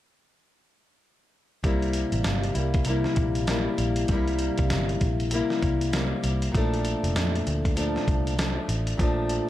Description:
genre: indie pop, bedroom pop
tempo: 98 BPM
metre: 4/4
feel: swing 60% on 16ths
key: unclear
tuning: A4 = 441 Hz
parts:
  - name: fingerpicked plugged-in steel-string acoustic guitar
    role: accompaniment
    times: 1.6-9.5 s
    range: Bb2 to E4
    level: -27 LUFS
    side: left 2 dB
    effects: wide subtle chorus, warbly pitch drift
  - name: vintage muted picked electric bass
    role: bass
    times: 1.6-9.4 s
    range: F1 to F2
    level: -28 LUFS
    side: equal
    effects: none
  - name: dusty soul sampler-style drum kit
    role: drums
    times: 1.6-9.5 s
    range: hi-hat, kick drum, snare drum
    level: -28 LUFS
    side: equal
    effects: none
room: light reverb, digital ambience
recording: none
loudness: -23 LUFS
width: side -13 dB against mid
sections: 1.6-9.5 A section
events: none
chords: 1.6 C7; 6.5 Bbmaj7

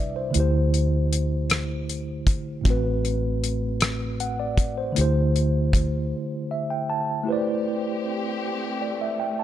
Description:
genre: slow six-eight R&B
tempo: 52 BPM (dotted quarters)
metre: 6/8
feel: straight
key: A dorian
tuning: A4 = 440 Hz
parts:
  - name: mellow tine electric piano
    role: accompaniment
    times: 0.0-9.4 s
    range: A2 to A5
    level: -25 LUFS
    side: right 1 dB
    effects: fast stereo tremolo
  - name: vintage muted fingered electric bass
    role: bass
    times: 0.0-6.1 s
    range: A1 to D2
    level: -25 LUFS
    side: equal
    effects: none
  - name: damped 70s drum kit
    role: drums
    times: 0.3-5.9 s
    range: hi-hat, kick drum, rim click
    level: -23 LUFS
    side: equal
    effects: vintage 12-bit sampler grit
  - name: warm studio string section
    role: sustained chords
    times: 7.3-9.4 s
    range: A3 to G4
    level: -32 LUFS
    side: left 2 dB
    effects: none
room: light reverb, small room ambience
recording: none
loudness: -22 LUFS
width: side -12 dB against mid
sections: 0.0-7.3 A section; 7.3-9.4 B section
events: break 6.1-7.3; tine electric piano fill 6.1-7.3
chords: 0.3 D9sus4; 2.7 Am69; 5.0 D9sus4; 7.3 Am11

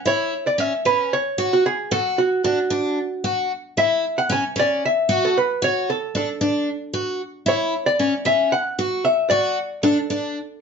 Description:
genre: progressive instrumental, progressive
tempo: 227 BPM (eighths)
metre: 7/8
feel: straight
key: F# minor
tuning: A4 = 439 Hz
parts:
  - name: archtop guitar, miked and amplified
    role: melody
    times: 0.0-10.6 s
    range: F#4 to G#5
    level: -20 LUFS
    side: equal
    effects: none
  - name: picked twelve-string acoustic guitar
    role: arpeggios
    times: 0.1-10.4 s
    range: C#4 to F#4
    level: -22 LUFS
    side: left 1 dB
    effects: none
room: wet studio reverb, RT60 0.6 s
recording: band playing live in one room, nothing above 7.5 kHz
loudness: -18 LUFS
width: side -6 dB against mid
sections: 0.1-10.6 A section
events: none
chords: 0.1 F#5; 1.9 D; 3.8 C#madd11; 5.6 D; 7.5 C#madd11; 9.3 D

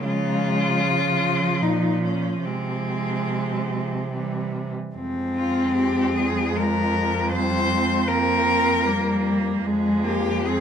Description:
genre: classical, lyrical piece for cello ensemble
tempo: 70-80 BPM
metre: 3/4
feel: rubato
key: F minor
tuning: A4 = 440 Hz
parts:
  - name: rich cello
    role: melody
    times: 0.0-10.6 s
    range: C4 to C5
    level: -24 LUFS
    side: left 4 dB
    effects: none
  - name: rich cello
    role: second line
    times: 0.0-10.6 s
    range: F3 to C4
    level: -27 LUFS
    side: right 7 dB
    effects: none
  - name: warm cello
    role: accompaniment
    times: 0.0-10.6 s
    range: E3 to C4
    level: -26 LUFS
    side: left 2 dB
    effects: none
  - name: warm cello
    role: bass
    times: 0.0-10.6 s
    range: F2 to Db3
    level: -27 LUFS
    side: right 2 dB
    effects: none
room: moderate large studio reverb, RT60 0.9 s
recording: minimal, uncompressed stereo recording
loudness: -20 LUFS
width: side -8 dB against mid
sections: 0.0-5.0 A section; 5.0-10.6 B section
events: none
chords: 0.0 Db; 1.6 Bbmadd11; 2.4 Fm/C; 4.1 C; 5.0 Fm; 7.3 C5/F; 9.7 Fm

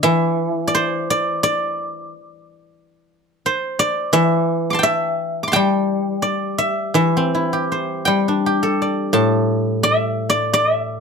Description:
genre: chinese traditional, Chinese solo plucked strings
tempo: 86 BPM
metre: 4/4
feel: uneven beats, rubato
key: A yu mode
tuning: A4 = 444 Hz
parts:
  - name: guzheng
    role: solo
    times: 0.0-11.0 s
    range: A2 to D6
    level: -16 LUFS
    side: equal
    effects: none
room: moderate studio reverb, RT60 0.6 s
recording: none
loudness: -16 LUFS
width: side -5 dB against mid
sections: 0.0-11.0 A section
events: none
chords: none

